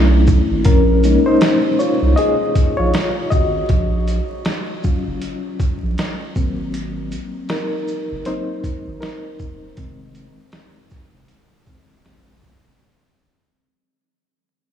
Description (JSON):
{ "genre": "lo-fi hip hop", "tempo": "79 BPM", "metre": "4/4", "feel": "swing 60% on 16ths", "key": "Bb minor", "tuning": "A4 = 442 Hz", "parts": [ { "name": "reed electric piano", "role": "accompaniment", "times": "0.0-12.8 s", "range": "Db3 to Eb5", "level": "-19 LUFS", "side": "left 2 dB", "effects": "fast tremolo, low-pass filter" }, { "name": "saturated sub bass", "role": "bass", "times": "0.0-12.8 s", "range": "Eb1 to C2", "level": "-18 LUFS", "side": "right 1 dB", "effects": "none" }, { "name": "boom bap sampler-style drum kit", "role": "drums", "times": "0.3-12.6 s", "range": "hi-hat, kick drum, shaker, snare drum", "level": "-20 LUFS", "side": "right 1 dB", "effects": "vintage 12-bit sampler grit" } ], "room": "light reverb", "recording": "vinyl crackle, studio reverb", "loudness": "-16 LUFS", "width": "side -9 dB against mid", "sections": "0.0-12.8 A section", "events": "reed electric piano solo 0.0-12.8; fade-out 0.7-12.8", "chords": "0.0 Bm11; 0.7 Bbm11; 3.7 Gbmaj7; 6.4 Ab9; 9.8 Fm7; 12.1 Bbm9", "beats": "| 0.66 1.42 2.18 2.94 | 3.70 4.46 5.22 5.98 | 6.74 7.50 8.26 9.01 | 9.77 10.53 11.29 12.05" }